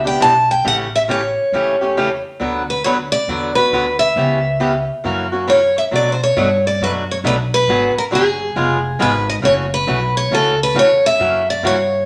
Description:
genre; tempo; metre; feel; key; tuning
acoustic string swing (jazz manouche); 136 BPM; 4/4; swing 64% on 8ths; unclear; A4 = 439 Hz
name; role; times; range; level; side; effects
picked steel-string acoustic guitar; melody; 0.0-12.1 s; G#4 to A5; -18 LUFS; equal; none
picked swing-style acoustic guitar; accompaniment; 0.0-11.8 s; B2 to B4; -22 LUFS; equal; none
upright bass; bass; 0.0-12.1 s; E#1 to B2; -26 LUFS; equal; none
room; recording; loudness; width
wet studio reverb, RT60 0.8 s; none; -16 LUFS; mono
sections
0.0-5.9 A section; 5.9-12.1 B section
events
none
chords
0.0 Em7; 0.6 A7; 2.4 D6; 4.2 C#m7b5; 5.0 F#7; 5.9 Bm7; 7.7 G#m7b5; 8.6 C#7; 9.4 F#m7; 11.2 F#7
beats
0.20 | 0.64 1.08 1.52 1.96 | 2.40 2.84 3.28 3.72 | 4.16 4.60 5.04 5.47 | 5.91 6.35 6.79 7.23 | 7.67 8.11 8.55 8.99 | 9.43 9.87 10.31 10.75 | 11.19 11.63

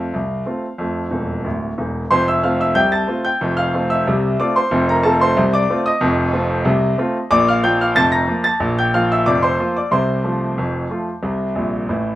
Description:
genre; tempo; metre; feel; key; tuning
ragtime piano; 92 BPM; 2/4; straight; F major; A4 = 440 Hz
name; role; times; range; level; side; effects
bright concert grand piano; solo; 0.0-12.1 s; D1 to Bb6; -16 LUFS; equal; none
room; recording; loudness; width
moderate studio reverb, RT60 0.5 s; minimal, uncompressed stereo recording; -15 LUFS; side -15 dB against mid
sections
0.0-2.1 A section; 2.1-12.2 A section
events
grand piano fill 1.1-2.1, 11.6-12.2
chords
0.0 F; 4.7 F7; 7.3 Bb; 9.9 F/C; 11.2 Am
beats
0.14 | 0.80 1.45 | 2.11 2.76 | 3.41 4.07 | 4.71 5.36 | 6.01 6.66 | 7.31 7.96 | 8.61 9.26 | 9.92 10.57 | 11.23 11.88

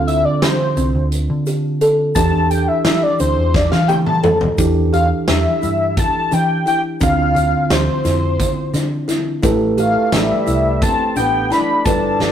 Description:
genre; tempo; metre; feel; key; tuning
progressive instrumental, band music in an uneven meter; 173 BPM (eighths); 7/8; straight; A minor; A4 = 440 Hz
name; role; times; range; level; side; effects
wide unison lead; melody; 0.0-12.3 s; C5 to B5; -18 LUFS; left 1 dB; none
tine electric piano; accompaniment; 0.0-12.3 s; D3 to B4; -21 LUFS; right 3 dB; none
kalimba; arpeggios; 0.0-12.3 s; C4 to A4; -22 LUFS; left 1 dB; none
hollow-body short-scale picked electric bass; bass; 0.0-12.3 s; G1 to E3; -20 LUFS; equal; none
big rock drum kit; drums; 0.1-12.3 s; hi-hat, kick drum, snare drum, toms; -20 LUFS; equal; none
egg shaker; percussion; 0.8-12.2 s; none; -38 LUFS; left 5 dB; none
warm flugelhorn; second line; 9.8-12.3 s; G3 to D4; -23 LUFS; left 2 dB; none
room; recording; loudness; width
moderate stone room reverb, RT60 1.1 s; rough rehearsal-room recording, tube saturation; -14 LUFS; side -9 dB against mid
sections
0.0-4.6 A section; 4.6-12.3 B section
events
analog synth lead solo 0.0-4.6; drum fill 3.5-4.6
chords
0.0 Dm7; 2.2 Em7; 7.0 Dm7; 9.4 Am9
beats
0.08 0.42 0.77 1.12 1.47 1.81 | 2.16 2.51 2.85 3.20 3.55 3.89 4.24 | 4.59 4.93 5.28 5.63 5.97 6.32 6.67 | 7.01 7.36 7.70 8.05 8.40 8.74 9.09 | 9.43 9.78 10.13 10.47 10.82 11.16 11.51 | 11.86 12.20

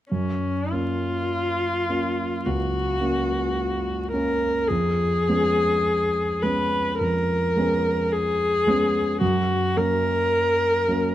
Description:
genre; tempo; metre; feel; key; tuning
classical, romantic duo for viola and grand piano; 53 BPM; 4/4; rubato; F# major; A4 = 440 Hz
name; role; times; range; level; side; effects
rich viola; melody; 0.1-11.1 s; C#4 to B4; -23 LUFS; left 1 dB; none
dark concert grand piano; accompaniment; 0.1-11.1 s; C#2 to C#4; -25 LUFS; right 1 dB; none
room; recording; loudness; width
moderate recital hall reverb, RT60 1.3 s; close, detailed microphones, vinyl crackle; -21 LUFS; side -13 dB against mid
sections
0.1-11.1 A section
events
none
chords
0.1 F#; 4.7 C#7/E#; 9.2 F#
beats
| 0.11 1.32 2.46 3.57 | 4.70 5.86 7.00 8.13 | 9.21 10.32

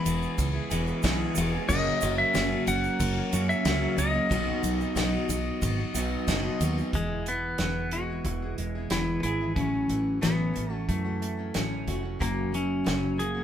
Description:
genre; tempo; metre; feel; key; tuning
folk rock and heartland rock; 91 BPM; 4/4; straight; E major from 6.9 s; A4 = 441 Hz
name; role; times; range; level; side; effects
pedal steel guitar; melody; 0.0-13.4 s; G#3 to B5; -30 LUFS; left 1 dB; none
picked steel-string acoustic guitar; accompaniment; 0.0-13.4 s; F#2 to G#4; -33 LUFS; left 4 dB; none
bright tonewheel organ; sustained chords; 0.0-6.9 s; E3 to D#5; -38 LUFS; equal; overdrive, slow rotary speaker
electric guitar through a small old amp; riff; 0.0-13.4 s; E2 to G#4; -32 LUFS; right 3 dB; spring reverb
fingered electric bass; bass; 0.1-13.4 s; E1 to F#2; -31 LUFS; right 1 dB; none
unplugged drum kit; drums; 0.1-13.3 s; crash cymbal, hi-hat, kick drum, ride cymbal, snare drum; -32 LUFS; equal; none
egg shaker; percussion; 0.1-6.9 s; none; -39 LUFS; right 8 dB; none
room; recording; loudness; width
moderate studio reverb, RT60 0.8 s; band playing live in one room; -25 LUFS; side -10 dB against mid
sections
0.0-6.9 A section; 6.9-13.4 B section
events
none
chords
0.0 E; 1.7 F#; 4.3 B; 6.9 E; 9.6 A6; 12.2 F#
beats
0.38 1.03 | 1.68 2.34 2.99 3.65 | 4.30 4.96 5.61 6.27 | 6.93 7.59 8.25 8.90 | 9.57 10.23 10.89 11.55 | 12.21 12.87

